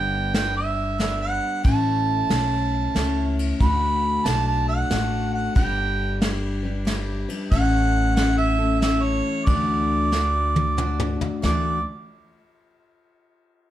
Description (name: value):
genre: honky-tonk and classic country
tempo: 92 BPM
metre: 3/4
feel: swing 66% on 8ths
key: D major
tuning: A4 = 438 Hz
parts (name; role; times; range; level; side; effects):
- mellow harmonica; melody; 0.0-11.8 s; C#5 to B5; -25 LUFS; right 4 dB; none
- picked steel-string acoustic guitar; accompaniment; 0.0-11.8 s; G2 to D5; -26 LUFS; left 4 dB; none
- upright bass; bass; 0.0-11.8 s; G1 to D2; -25 LUFS; equal; none
- soft brush drum kit; drums; 0.3-11.6 s; kick drum, ride cymbal, snare drum, toms; -26 LUFS; equal; none
room: light reverb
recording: dark, warm production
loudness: -20 LUFS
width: side -12 dB against mid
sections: 0.0-11.4 A section; 11.4-13.4 B section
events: drum fill 10.1-11.4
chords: 0.0 G; 1.7 A; 3.6 D; 5.6 G; 7.5 A; 9.5 Dadd9